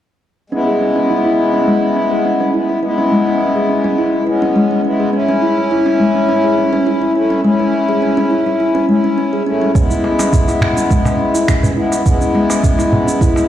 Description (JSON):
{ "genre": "organic downtempo", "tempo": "104 BPM", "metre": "4/4", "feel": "straight", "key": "C# minor pentatonic", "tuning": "A4 = 440 Hz", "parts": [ { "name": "pedal harmonium", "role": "accompaniment", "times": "0.5-13.5 s", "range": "G#3 to E4", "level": "-16 LUFS", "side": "left 2 dB", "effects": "sidechain pumping, tape echo" }, { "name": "kalimba", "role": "arpeggios", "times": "0.5-13.5 s", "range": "G#3 to G#4", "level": "-15 LUFS", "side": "equal", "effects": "low-pass filter, tape echo" }, { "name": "electronic kick drum", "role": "drums", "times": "9.8-13.3 s", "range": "none", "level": "-13 LUFS", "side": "right 1 dB", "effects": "none" }, { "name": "electronic shaker and finger snaps", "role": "drums", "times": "9.8-13.5 s", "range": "none", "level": "-25 LUFS", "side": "right 2 dB", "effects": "none" }, { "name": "darbuka", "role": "percussion", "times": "10.0-13.5 s", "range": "none", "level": "-21 LUFS", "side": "right 1 dB", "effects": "none" } ], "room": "moderate lush hall reverb, RT60 2.5 s", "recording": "played on a big sound system in a bare room, large studio reverb", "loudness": "-12 LUFS", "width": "side -11 dB against mid", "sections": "0.5-13.5 A section", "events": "none", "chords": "0.5 C#m7; 5.1 A (rootless); 9.8 C#m7", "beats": "| 0.52 1.10 1.67 2.25 | 2.83 3.40 3.98 4.56 | 5.13 5.71 6.29 6.87 | 7.44 8.02 8.60 9.17 | 9.75 10.33 10.90 11.48 | 12.06 12.63 13.21" }